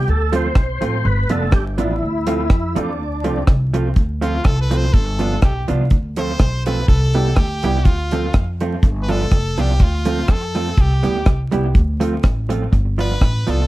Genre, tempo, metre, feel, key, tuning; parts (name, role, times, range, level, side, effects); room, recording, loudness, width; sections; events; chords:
ska; 123 BPM; 4/4; swing 54% on 8ths; D dorian; A4 = 440 Hz
overdriven tonewheel organ; melody; 0.0-3.4 s; D4 to C5; -23 LUFS; equal; chorus vibrato, slow rotary speaker, slapback echo
upright bass; bass; 0.0-13.7 s; F1 to F2; -20 LUFS; equal
deep reggae drum kit; drums; 0.1-13.6 s; hi-hat, kick drum, rim click; -15 LUFS; equal
vintage hollow-body jazz guitar; accompaniment; 0.3-13.6 s; F3 to G4; -22 LUFS; right 3 dB; slapback echo
brilliant trumpet; melody; 4.2-13.7 s; F4 to C5; -25 LUFS; equal; slapback echo
light reverb; dark, warm production, vinyl crackle; -15 LUFS; side -17 dB against mid
0.0-4.0 A section; 4.0-13.7 B section
trumpet solo 4.0-13.7
0.1 Dm7; 1.0 G7; 2.0 Dm7; 4.9 G7; 5.9 Dm7; 6.9 Cmaj7; 7.9 Dm7; 8.8 G7; 9.8 Dm7; 10.8 Cmaj7; 11.8 Dm7; 12.7 G7